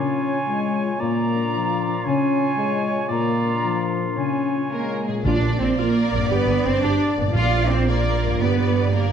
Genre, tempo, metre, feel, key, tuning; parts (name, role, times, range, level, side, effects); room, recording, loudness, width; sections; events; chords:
cinematic; 114 BPM (dotted quarters); 6/8; straight; Bb major; A4 = 440 Hz
bright small flute group; second line; 0.0-5.1 s; Ab5 to Bb5; -28 LUFS; right 3 dB
clear clarinet; second line; 0.0-5.0 s; F4; -30 LUFS; left 1 dB
warm oboe; second line; 0.0-5.0 s; Db5 to D5; -30 LUFS; right 1 dB
mellow French horn section; sustained chords; 0.0-5.2 s; F3 to Db4; -24 LUFS; left 2 dB
concert harp; arpeggios; 0.0-9.1 s; G2 to D5; -28 LUFS; left 8 dB
rich symphonic violin section; melody; 4.7-9.1 s; Ab4 to F5; -30 LUFS; left 2 dB
rich symphonic cello section; bass; 4.7-9.1 s; Ab3 to F4; -23 LUFS; right 2 dB
rich studio viola section; accompaniment; 5.2-9.0 s; Bb3 to D5; -27 LUFS; right 2 dB
rich symphonic double bass section; bass; 5.2-9.1 s; G1 to Bb1; -23 LUFS; right 4 dB
timpani; percussion; 5.2-7.8 s; Bb2; -25 LUFS; equal
warm symphonic violin section; second line; 5.3-9.1 s; D5; -29 LUFS; equal
wet scoring stage reverb, RT60 1.7 s; dark, warm production; -19 LUFS; side -8 dB against mid
0.0-5.2 A section; 5.2-9.1 B section
build-up 0.0-5.2
0.0 Db; 1.0 Bb; 2.0 Db; 3.1 Bb; 4.2 Db; 5.2 Bb; 6.3 G; 7.3 Bb; 8.4 G